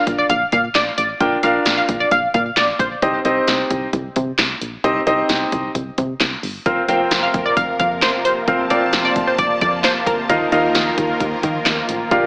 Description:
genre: synth-pop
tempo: 132 BPM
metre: 4/4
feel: straight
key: Bb major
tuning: A4 = 440 Hz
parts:
  - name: funky polysynth comp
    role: second line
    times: 0.0-2.9, 6.9-10.2 s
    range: Bb4 to F5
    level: -21 LUFS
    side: equal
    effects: chorus, tape echo
  - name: clear baby grand piano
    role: accompaniment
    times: 0.0-12.3 s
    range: C4 to G5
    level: -21 LUFS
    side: equal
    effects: none
  - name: solid FM bass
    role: bass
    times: 0.1-12.3 s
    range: F1 to Eb3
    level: -28 LUFS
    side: equal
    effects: none
  - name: punchy analog drum machine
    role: drums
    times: 0.1-12.2 s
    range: handclaps, hi-hat, kick drum, snare drum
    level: -23 LUFS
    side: equal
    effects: none
  - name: lush unison pad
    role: sustained chords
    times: 6.7-12.3 s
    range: C3 to A5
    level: -25 LUFS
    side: equal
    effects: chorus
room: moderate lush hall reverb, RT60 1.9 s, digital ambience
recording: AM radio sound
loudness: -18 LUFS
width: mono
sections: 0.0-12.3 A section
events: none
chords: 0.0 Bb; 3.0 Cm; 6.7 Fsus4; 10.3 Ebsus2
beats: 0.30 0.75 | 1.21 1.66 2.11 2.57 | 3.02 3.48 3.93 4.39 | 4.84 5.30 5.75 6.21 | 6.66 7.11 7.57 8.02 | 8.48 8.93 9.39 9.84 | 10.30 10.75 11.21 11.66 | 12.11

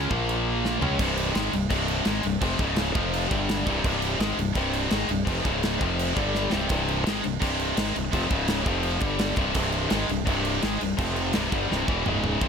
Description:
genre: heavy metal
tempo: 168 BPM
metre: 4/4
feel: straight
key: unclear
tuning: A4 = 440 Hz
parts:
  - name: heavy high-gain guitar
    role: riff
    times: 0.0-12.5 s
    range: C2 to Db4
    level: -30 LUFS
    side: right 16 dB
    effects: distortion
  - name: heavy high-gain guitar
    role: riff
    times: 0.0-12.4 s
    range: C2 to Db4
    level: -31 LUFS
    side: equal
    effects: distortion
  - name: tight distorted guitar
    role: riff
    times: 0.0-12.5 s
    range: C2 to Db4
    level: -28 LUFS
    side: left 13 dB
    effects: distortion
  - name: growling fingered electric bass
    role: bass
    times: 0.0-12.5 s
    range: C1 to Db2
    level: -30 LUFS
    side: right 1 dB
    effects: overdrive
  - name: modern studio drum kit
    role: drums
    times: 0.1-12.5 s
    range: china cymbal, crash cymbal, kick drum, snare drum, toms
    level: -29 LUFS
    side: right 1 dB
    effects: none
room: little or no reverb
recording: none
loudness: -23 LUFS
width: side -6 dB against mid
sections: 1.0-12.4 A section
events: drum fill 0.6-1.0, 6.3-6.7, 11.7-12.4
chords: 0.0 Bb5; 1.0 C5; 2.6 Db5; 3.0 F5; 3.3 G5; 3.7 C5; 5.4 Db5; 5.8 F5; 6.2 G5; 6.5 C5; 8.3 Db5; 8.7 F5; 9.0 G5; 9.4 C5; 11.0 F5; 11.3 C; 12.1 Db5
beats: 0.28 0.64 | 0.99 1.35 1.71 2.06 | 2.42 2.77 3.13 3.49 | 3.84 4.20 4.56 4.91 | 5.27 5.63 5.98 6.34 | 6.70 7.05 7.41 7.77 | 8.13 8.48 8.84 9.20 | 9.55 9.91 10.27 10.63 | 10.98 11.34 11.70 12.06 | 12.41

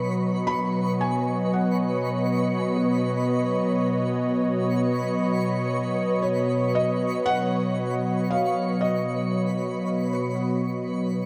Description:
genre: ambient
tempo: 58 BPM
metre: 4/4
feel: straight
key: B major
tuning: A4 = 440 Hz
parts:
  - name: felt-muted upright piano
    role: melody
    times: 0.0-10.8 s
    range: C#5 to B5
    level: -32 LUFS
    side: equal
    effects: diffuse ambient delay
  - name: warm analog pad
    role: sustained chords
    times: 0.0-11.3 s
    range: B2 to D#5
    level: -26 LUFS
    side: equal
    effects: chorus
  - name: twinkling granular texture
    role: texture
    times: 0.0-11.3 s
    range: B4 to C#6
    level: -34 LUFS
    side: equal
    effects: built-in reverb
  - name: soft round pluck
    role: arpeggios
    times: 2.8-11.3 s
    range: none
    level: barely audible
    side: none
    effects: none
room: wet cathedral reverb, RT60 5.2 s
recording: in a vast, echoing space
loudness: -25 LUFS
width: mono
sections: 0.0-11.3 A section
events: none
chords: 0.0 Badd9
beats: | 0.55 1.58 2.61 3.65 | 4.68 5.72 6.75 7.79 | 8.82 9.86 10.89

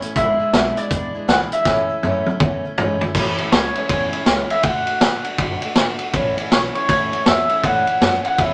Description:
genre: rockabilly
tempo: 160 BPM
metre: 4/4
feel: swing 62% on 8ths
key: A major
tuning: A4 = 441 Hz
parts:
  - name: picked steel-string acoustic guitar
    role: accompaniment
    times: 0.0-8.5 s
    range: E2 to F#4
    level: -27 LUFS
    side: equal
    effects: none
  - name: upright bass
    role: bass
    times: 0.0-8.5 s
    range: F#1 to A2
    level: -32 LUFS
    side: equal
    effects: none
  - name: vintage drum kit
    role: drums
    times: 0.0-8.5 s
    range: crash cymbal, hi-hat, kick drum, ride cymbal, snare drum, toms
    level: -21 LUFS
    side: equal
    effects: none
  - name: electric guitar through a small old amp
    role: melody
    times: 0.2-8.5 s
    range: C#5 to F#5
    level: -22 LUFS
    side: equal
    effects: harmonic tremolo
room: moderate studio reverb, RT60 0.8 s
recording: none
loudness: -19 LUFS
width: mono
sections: 0.0-3.1 A section; 3.1-8.5 B section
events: drum fill 1.7-3.1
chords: 0.2 E7; 1.7 A; 4.6 D; 6.1 A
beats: | 0.15 0.53 0.90 1.28 | 1.65 2.02 2.40 2.77 | 3.15 3.52 3.90 4.27 | 4.64 5.02 5.39 5.77 | 6.14 6.51 6.89 7.26 | 7.64 8.01 8.38

